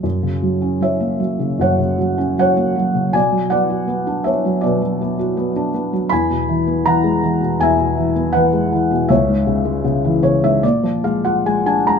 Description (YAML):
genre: classical, lyrical solo piano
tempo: 79 BPM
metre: 4/4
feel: uneven beats, rubato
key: F# mixolydian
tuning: A4 = 440 Hz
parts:
  - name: felt-muted upright piano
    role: solo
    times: 0.0-12.0 s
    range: C#2 to B5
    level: -15 LUFS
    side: equal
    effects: none
room: moderate small room reverb, RT60 0.5 s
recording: minimal, uncompressed stereo recording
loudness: -15 LUFS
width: side -6 dB against mid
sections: 0.0-12.0 A section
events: felt piano fill 9.9-12.0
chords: 0.0 F#; 3.1 Bm; 6.1 Eadd9; 9.1 C#m; 10.6 A#7